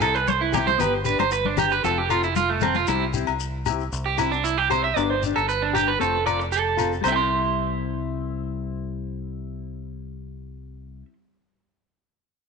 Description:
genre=highlife guitar band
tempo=115 BPM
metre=4/4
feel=straight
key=C major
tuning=A4 = 440 Hz
part: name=mellow electric guitar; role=accompaniment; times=0.0-11.1 s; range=F3 to A4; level=-30 LUFS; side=left 12 dB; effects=phaser
part: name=electric guitar at the edge of break-up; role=arpeggios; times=0.0-11.1 s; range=A3 to C6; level=-22 LUFS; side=right 8 dB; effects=wide subtle chorus, tape echo
part: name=fingered electric bass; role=bass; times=0.0-11.0 s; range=F1 to C2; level=-30 LUFS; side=equal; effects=none
part: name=agogo bells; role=percussion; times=0.0-7.2 s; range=none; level=-30 LUFS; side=left 12 dB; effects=none
part: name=shekere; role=percussion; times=0.0-7.3 s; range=none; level=-33 LUFS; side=left 6 dB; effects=none
part: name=congas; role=percussion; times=0.3-2.9 s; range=none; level=-30 LUFS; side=left 11 dB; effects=none
room=moderate echo chamber reverb, RT60 1.8 s, small room ambience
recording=1960s-style stereo with parts hard left and right, nothing above 10.3 kHz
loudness=-21 LUFS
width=side -5 dB against mid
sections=0.0-7.0 A section; 7.0-11.2 B section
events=clean electric guitar solo 0.0-7.0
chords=0.0 C; 0.8 G; 1.8 F; 2.9 C; 5.0 G; 6.0 F; 7.0 C

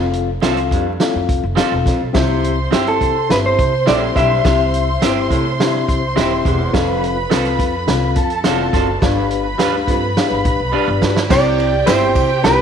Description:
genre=uptempo 1960s-style soul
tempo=105 BPM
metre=4/4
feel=straight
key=C major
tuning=A4 = 442 Hz
part: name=mellow tine electric piano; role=accompaniment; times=0.0-12.6 s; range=C4 to F5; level=-20 LUFS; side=left 9 dB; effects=medium stereo tremolo
part: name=mellow baritone saxophone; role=riff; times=0.0-11.7 s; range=D2 to C3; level=-25 LUFS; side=right 10 dB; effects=none
part: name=upright bass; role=bass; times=0.0-12.6 s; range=Eb1 to C3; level=-22 LUFS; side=equal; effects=none
part: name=vintage drum kit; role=drums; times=0.1-12.6 s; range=crash cymbal, hi-hat, kick drum, ride cymbal, snare drum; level=-19 LUFS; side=right 2 dB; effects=none
part: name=electric guitar through a small old amp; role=stabs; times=0.4-12.0 s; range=G3 to C5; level=-25 LUFS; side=right 11 dB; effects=spring reverb
part: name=warm studio violin section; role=second line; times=2.2-12.6 s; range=G4 to C6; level=-23 LUFS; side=right 1 dB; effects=none
part: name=electric guitar through a small old amp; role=melody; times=2.8-5.3, 11.3-12.6 s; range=G4 to E5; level=-16 LUFS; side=right 1 dB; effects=none
part: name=tambourine and handclaps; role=percussion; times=11.3-12.3 s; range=none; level=-31 LUFS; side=left 11 dB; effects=none
room=moderate echo chamber reverb, RT60 1.8 s, studio ambience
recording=1960s-style stereo with parts hard left and right, vinyl crackle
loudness=-14 LUFS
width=side -7 dB against mid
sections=0.0-11.3 A section; 11.3-12.6 B section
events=drum fill 10.7-11.3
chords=0.0 F; 2.2 C; 6.7 F; 9.0 G7; 11.3 C

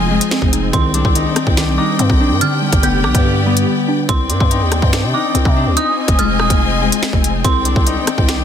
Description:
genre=hip hop, drill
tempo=143 BPM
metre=4/4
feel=half-time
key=C harmonic minor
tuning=A4 = 440 Hz
part: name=muted felt-like synth keys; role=accompaniment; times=0.0-4.1 s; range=D3 to Eb4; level=-19 LUFS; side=right 3 dB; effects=chorus
part: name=warm symphonic string section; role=sustained chords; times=0.0-8.4 s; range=Eb3 to Ab5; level=-22 LUFS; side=left 1 dB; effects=none
part: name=Celtic harp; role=arpeggios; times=0.0-8.4 s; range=Ab3 to Eb4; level=-20 LUFS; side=left 9 dB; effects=ping-pong delay
part: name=growling 808-style bass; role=bass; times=0.0-8.4 s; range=Eb1 to C3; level=-18 LUFS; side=equal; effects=none
part: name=drill drum kit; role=drums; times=0.2-8.4 s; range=finger snaps, hi-hat, kick drum, rim click, snare drum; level=-16 LUFS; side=equal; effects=soft clipping on snare
part: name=dark detuned synth bell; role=second line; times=0.7-7.8 s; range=C6 to G6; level=-22 LUFS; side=right 3 dB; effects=chorus, ping-pong delay
room=digital ambience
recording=dense, heavily limited modern master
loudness=-12 LUFS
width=side -9 dB against mid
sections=0.0-4.1 A section; 4.1-8.4 A section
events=break 3.7-4.1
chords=0.0 Fm7; 0.7 Cmadd9; 2.4 G; 4.1 Cmadd9; 5.8 Fm7; 7.4 Cmadd9

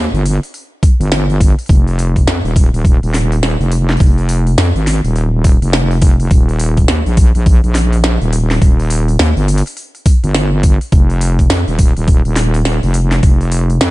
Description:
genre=glitch hop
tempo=104 BPM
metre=4/4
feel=swing 62% on 16ths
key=F minor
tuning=A4 = 440 Hz
part: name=wobble bass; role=bass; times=0.0-13.9 s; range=Eb1 to F2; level=-13 LUFS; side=equal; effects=chorus, tube saturation
part: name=glitchy drum kit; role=drums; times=0.1-13.9 s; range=hi-hat, snare drum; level=-19 LUFS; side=equal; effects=none
part: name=electronic kick drum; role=drums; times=0.8-13.4 s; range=none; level=-10 LUFS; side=equal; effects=overdrive
room=little or no reverb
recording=nothing above 10.7 kHz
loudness=-10 LUFS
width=side -19 dB against mid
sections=0.0-13.9 A section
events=none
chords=none

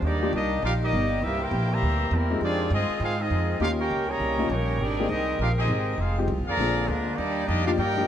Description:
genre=jazz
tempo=201 BPM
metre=4/4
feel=swing 63% on 8ths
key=Eb major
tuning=A4 = 440 Hz
part: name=warm trumpet section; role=melody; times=0.0-8.1 s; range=G3 to Bb5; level=-28 LUFS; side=left 1 dB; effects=none
part: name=bright trombone section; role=second line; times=0.0-8.1 s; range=Db3 to G4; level=-32 LUFS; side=right 3 dB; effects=none
part: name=bright saxophone section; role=sustained chords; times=0.0-8.1 s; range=D3 to D5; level=-34 LUFS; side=left 1 dB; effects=none
part: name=upright bass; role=bass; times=0.0-8.1 s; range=F1 to Ab2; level=-27 LUFS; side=right 1 dB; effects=none
part: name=warm baby grand piano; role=accompaniment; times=0.2-8.1 s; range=F3 to Bb4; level=-30 LUFS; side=left 4 dB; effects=none
room=moderate echo chamber reverb, RT60 2.4 s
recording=none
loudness=-23 LUFS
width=side -10 dB against mid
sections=0.0-8.1 A section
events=none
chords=0.0 Ebmaj7; 1.2 C7; 2.4 Fm7; 3.6 Eb7; 4.8 Abmaj7; 6.0 Fm7; 6.6 Bb7; 7.2 Ebmaj7

